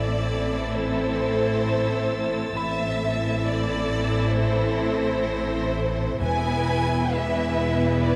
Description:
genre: cinematic, suspense film score.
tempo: 66 BPM.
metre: 4/4.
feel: straight.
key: A minor.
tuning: A4 = 441 Hz.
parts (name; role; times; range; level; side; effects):
rich studio violin section; melody; 0.0-8.2 s; C5 to G#5; -30 LUFS; equal; none.
rich studio violin section; second line; 0.0-8.2 s; E4 to B4; -31 LUFS; equal; none.
rich studio viola section; accompaniment; 0.0-8.2 s; E3 to C4; -32 LUFS; equal; none.
clear studio cello section; bass; 0.0-8.2 s; E2 to A2; -32 LUFS; equal; none.
rich studio double bass section; bass; 0.0-8.2 s; E1 to A1; -31 LUFS; equal; none.
clear baby grand piano; texture; 0.0-6.2 s; B5 to E6; -43 LUFS; equal; none.
rich studio violin section; texture; 0.0-5.7 s; E6 to A6; -39 LUFS; equal; none.
timpani; percussion; 6.2-7.5 s; E2; -36 LUFS; equal; none.
room: wet cathedral reverb, RT60 6.6 s.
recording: in a vast, echoing space.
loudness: -24 LUFS.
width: mono.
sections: 0.0-8.2 A section.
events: none.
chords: 0.0 Am; 6.2 E.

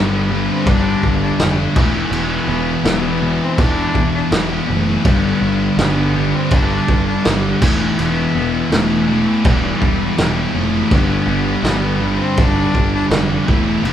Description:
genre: quiet-loud alternative rock.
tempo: 82 BPM.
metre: 4/4.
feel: straight.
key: G major.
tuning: A4 = 438 Hz.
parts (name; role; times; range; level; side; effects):
rich cello; melody; 0.0-13.9 s; G3 to D4; -22 LUFS; left 2 dB; none.
heavy high-gain guitar; riff; 0.0-13.9 s; E3 to G4; -25 LUFS; equal; distortion.
thick fuzz guitar; riff; 0.0-13.9 s; E2 to G3; -20 LUFS; left 5 dB; distortion.
thick fuzz guitar; riff; 0.0-13.9 s; E2 to G3; -22 LUFS; right 6 dB; distortion.
growling picked electric bass; bass; 0.0-13.9 s; E1 to G1; -23 LUFS; equal; overdrive.
loose indie drum kit; drums; 0.7-13.9 s; crash cymbal, kick drum, snare drum; -19 LUFS; equal; none.
room: moderate large studio reverb, RT60 0.9 s.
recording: band playing live in one room.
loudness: -14 LUFS.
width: side -10 dB against mid.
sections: 0.0-13.9 A section.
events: none.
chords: 0.0 G; 1.8 Em; 5.1 G; 7.6 Em; 10.9 G.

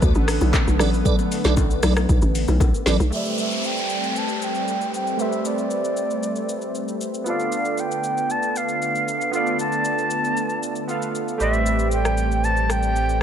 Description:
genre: amapiano.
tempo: 116 BPM.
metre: 4/4.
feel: straight.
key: A minor.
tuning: A4 = 440 Hz.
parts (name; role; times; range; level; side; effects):
lush unison pad; sustained chords; 0.0-13.2 s; D3 to C4; -27 LUFS; equal; chorus, sidechain pumping, low-pass filter.
hollow log drum bass; bass; 0.0-3.1 s; A1 to D2; -20 LUFS; equal; none.
afro-pop drum kit; drums; 0.0-13.2 s; handclaps, hi-hat, kick drum, rim click, shaker, snare drum; -24 LUFS; equal; vintage 12-bit sampler grit.
bongos and congas; percussion; 0.4-3.0 s; none; -28 LUFS; left 6 dB; none.
tonewheel organ; stabs; 0.8-3.0 s; A4 to D5; -29 LUFS; right 8 dB; overdrive, chorus vibrato, ping-pong delay.
breathy bright jazz flute; melody; 3.1-13.2 s; D5 to A5; -24 LUFS; right 1 dB; low-pass filter, ping-pong delay.
warm analog keys; accompaniment; 3.1-13.2 s; A3 to F5; -28 LUFS; right 3 dB; chorus, low-pass filter.
downlifter; sound effects; 3.1-7.3 s; none; -30 LUFS; equal; none.
sub bass with octave; bass; 11.4-13.2 s; A1; -22 LUFS; equal; none.
room: light reverb.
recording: none.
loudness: -19 LUFS.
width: side -9 dB against mid.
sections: 0.0-3.1 A section; 3.1-13.2 B section.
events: drop 0.0-3.1; filter sweep 3.1-13.2.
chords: 0.0 Asus24; 3.1 Am11; 7.3 Bm7b5; 11.4 Am11.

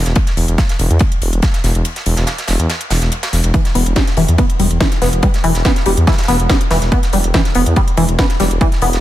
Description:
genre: driving peak-time techno.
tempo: 142 BPM.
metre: 4/4.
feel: straight.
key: E minor.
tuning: A4 = 440 Hz.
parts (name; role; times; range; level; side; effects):
detuned saw bass; bass; 0.0-9.0 s; E1 to E2; -15 LUFS; equal; sidechain pumping.
techno drum kit; drums; 0.1-9.0 s; hi-hat, snare drum; -22 LUFS; equal; overdrive, sidechain pumping on hats, studio reverb.
tight metal drum kit; drums; 0.1-9.0 s; ride cymbal, snare drum; -24 LUFS; equal; high-pass filter on cymbals, studio reverb, high-pass filter on snare, high-pass filter on room, dub echo.
electronic kick drum; drums; 0.2-8.7 s; none; -14 LUFS; equal; overdrive, studio reverb.
tight sequenced synth; riff; 3.5-8.9 s; E3 to B3; -17 LUFS; left 1 dB; chorus, sidechain pumping, dub echo.
room: small room ambience.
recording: echo-heavy mix.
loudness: -12 LUFS.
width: side -14 dB against mid.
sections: 0.0-9.0 A section.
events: break 1.8-3.5.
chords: 0.0 E5.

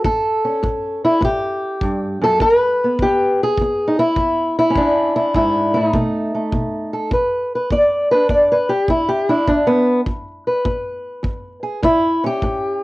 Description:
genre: acoustic country blues, solo or duo.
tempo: 102 BPM.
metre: 4/4.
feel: swing 68% on 8ths.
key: unclear.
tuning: A4 = 439 Hz.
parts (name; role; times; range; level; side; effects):
fingerpicked old ladder-braced acoustic guitar; melody; 0.0-12.8 s; E2 to D5; -15 LUFS; equal; cassette tape.
kick drum; drums; 0.0-12.6 s; none; -24 LUFS; equal; cassette tape.
room: moderate studio reverb, RT60 0.6 s.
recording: home recording on cassette.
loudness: -15 LUFS.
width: side -19 dB against mid.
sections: 0.0-7.1 A section; 7.1-12.8 B section.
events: steel-string acoustic guitar solo 7.1-12.8.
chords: 0.0 A7; 2.4 E7; 5.9 B7; 7.1 E7(no3); 11.8 A7.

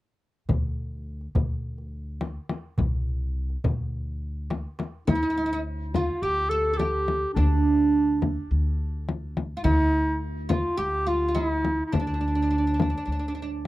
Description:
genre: Arabic maqam ensemble.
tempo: 105 BPM.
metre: 4/4.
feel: straight.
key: D maqam bayati.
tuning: A4 = 440 Hz.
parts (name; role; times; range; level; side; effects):
upright bass; bass; 0.5-13.7 s; C2 to D2; -28 LUFS; equal; none.
darbuka; percussion; 0.5-4.9 s; none; -31 LUFS; right 1 dB; none.
frame drum; percussion; 0.5-12.9 s; none; -27 LUFS; left 3 dB; none.
clear clarinet; melody; 5.1-13.6 s; D4 to A4; -26 LUFS; equal; tape echo.
oud; second line; 5.1-13.5 s; D4 to A4; -28 LUFS; right 3 dB; none.
room: moderate booth ambience, RT60 0.2 s.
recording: dry, close 1970s-style studio recording.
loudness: -23 LUFS.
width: side -17 dB against mid.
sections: 0.5-5.1 A section; 5.1-13.7 B section.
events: none.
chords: none.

